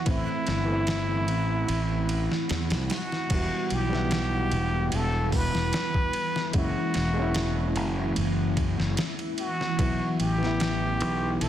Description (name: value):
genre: trip hop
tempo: 74 BPM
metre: 4/4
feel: straight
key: unclear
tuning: A4 = 439 Hz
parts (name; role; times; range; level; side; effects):
- trumpet with plunger mute; melody; 0.0-11.5 s; E4 to B4; -31 LUFS; equal; tape echo
- overdriven reed electric piano; accompaniment; 0.0-11.5 s; E3 to F#5; -31 LUFS; equal; harmonic tremolo, vintage 12-bit sampler grit, tape echo
- string machine, cellos; sustained chords; 0.0-11.5 s; E3 to E4; -33 LUFS; left 1 dB; phaser, ensemble chorus
- backwards swelling texture; texture; 0.0-3.3 s; F#5; -48 LUFS; right 1 dB; none
- fuzz fingered electric bass; bass; 0.1-11.5 s; E1 to E2; -28 LUFS; equal; overdrive
- trip hop sampler-style drum kit; drums; 0.1-11.5 s; crash cymbal, hi-hat, kick drum, ride cymbal, snare drum; -31 LUFS; equal; studio reverb
room: digital ambience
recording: dense, heavily limited modern master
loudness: -24 LUFS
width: side -11 dB against mid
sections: 0.0-3.3 A section; 3.3-11.5 B section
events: kick drops out 1.7-3.3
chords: 0.1 Am; 3.3 Emadd9; 6.6 F#7; 9.8 Bsus4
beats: | 0.07 0.88 1.69 2.50 | 3.31 4.12 4.93 5.74 | 6.55 7.36 8.17 8.98 | 9.80 10.61 11.42